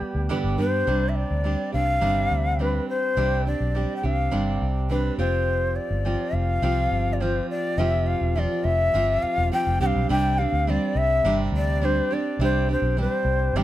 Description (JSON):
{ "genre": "acoustic pop", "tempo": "104 BPM", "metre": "4/4", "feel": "straight", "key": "unclear", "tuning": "A4 = 437 Hz", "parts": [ { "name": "shakuhachi", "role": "melody", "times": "0.0-13.6 s", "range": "G4 to G5", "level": "-25 LUFS", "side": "left 2 dB", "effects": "plate reverb" }, { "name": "picked steel-string acoustic guitar", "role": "accompaniment", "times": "0.0-13.6 s", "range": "G2 to G4", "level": "-27 LUFS", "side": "right 3 dB", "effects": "none" }, { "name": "vintage muted fingered electric bass", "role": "bass", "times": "0.0-13.6 s", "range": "E1 to G2", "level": "-24 LUFS", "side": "equal", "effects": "none" } ], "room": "light reverb", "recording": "none", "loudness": "-21 LUFS", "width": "side -14 dB against mid", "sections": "0.9-10.1 A section; 10.1-13.6 B section", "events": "none", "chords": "0.0 G; 0.9 Csus2; 5.2 Fsus2; 9.8 Csus2" }